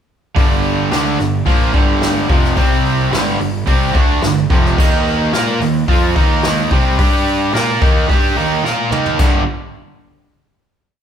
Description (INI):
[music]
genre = hard rock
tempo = 109 BPM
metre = 4/4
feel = straight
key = G minor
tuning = A4 = 440 Hz
[part]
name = crunchy overdriven guitar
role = riff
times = 0.3-9.4 s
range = F2 to Bb4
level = -18 LUFS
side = right 7 dB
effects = none
[part]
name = distorted electric guitar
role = riff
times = 0.4-9.4 s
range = F2 to Bb4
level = -21 LUFS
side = left 5 dB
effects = overdrive
[part]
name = distorted electric guitar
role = riff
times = 0.4-9.4 s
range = F2 to Bb4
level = -20 LUFS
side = equal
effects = distortion
[part]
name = fuzz picked electric bass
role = bass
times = 0.4-9.5 s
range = F1 to Bb2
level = -23 LUFS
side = equal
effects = overdrive
[part]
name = jazz brush drum kit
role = drums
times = 0.4-9.3 s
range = crash cymbal, hi-hat, kick drum, snare drum, toms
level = -16 LUFS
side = left 1 dB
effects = none
[sound]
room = moderate large studio reverb, RT60 1.2 s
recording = band playing live in one room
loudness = -12 LUFS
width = side -8 dB against mid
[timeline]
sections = 0.4-9.2 riff; 9.2-11.0 final chord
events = drum fill 8.6-9.2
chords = 0.4 Gm; 2.6 C5; 3.1 G5; 4.8 Eb5; 7.0 G5; 7.5 Eb5; 9.2 Gm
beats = | 0.36 0.91 1.46 2.02 | 2.57 3.12 3.67 4.22 | 4.77 5.33 5.88 6.43 | 6.98 7.54 8.09 8.64 | 9.20